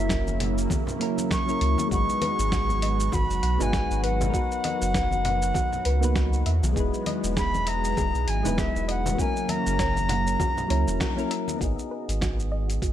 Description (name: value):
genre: sunset chillout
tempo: 99 BPM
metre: 4/4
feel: swing 57% on 16ths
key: G# minor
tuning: A4 = 436 Hz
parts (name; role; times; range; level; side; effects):
- bright baroque flute; melody; 0.0-11.3 s; E5 to C#6; -29 LUFS; equal; vintage 12-bit sampler grit, digital delay
- soft electric-piano-like synth keys; accompaniment; 0.0-12.9 s; F#3 to D#5; -31 LUFS; moving between left 6 dB and right 6 dB; chorus, auto-pan, low-pass filter, digital delay
- lush unison pad; sustained chords; 0.0-11.6 s; C#3 to F#4; -32 LUFS; equal; chorus
- warm sub bass; bass; 0.0-12.9 s; E1 to E2; -26 LUFS; equal; none
- dusty soul sampler-style drum kit; drums; 0.1-12.9 s; hi-hat, shaker, snare drum; -32 LUFS; equal; none
- electronic kick drum; drums; 0.1-12.9 s; none; -29 LUFS; equal; none
- congas; percussion; 0.3-11.6 s; none; -34 LUFS; left 3 dB; none
- soft round pluck; arpeggios; 1.9-12.9 s; F#4 to G#5; -37 LUFS; right 1 dB; chorus, digital delay
room: light reverb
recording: none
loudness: -22 LUFS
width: side -11 dB against mid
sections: 0.0-11.6 A section; 11.6-12.9 B section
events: band accent 11.0-11.3; filter sweep on synth keys 11.6-12.9; filter sweep on synth arpeggio sound 11.6-12.9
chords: 0.0 F#7; 1.9 G#m7; 4.3 Bmaj7/F#; 6.5 Emaj7; 9.2 F#7; 11.6 G#m7